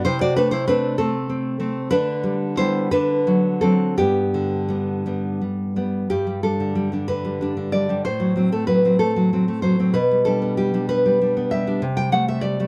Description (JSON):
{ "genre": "romantic piece for solo classical guitar", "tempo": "56-66 BPM (dotted quarters)", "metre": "6/8", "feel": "rubato", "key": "G major", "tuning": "A4 = 440 Hz", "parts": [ { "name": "nylon-string guitar", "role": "solo", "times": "0.0-12.7 s", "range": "G2 to G5", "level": "-21 LUFS", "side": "equal", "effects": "none" } ], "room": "light reverb", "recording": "none", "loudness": "-21 LUFS", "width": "mono", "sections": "0.0-6.1 A section; 6.1-12.7 B section", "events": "none", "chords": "0.0 Am/C; 1.9 G/D; 2.9 D7; 4.0 G; 8.0 F#dim/A; 10.0 G/B; 11.8 Am7/C" }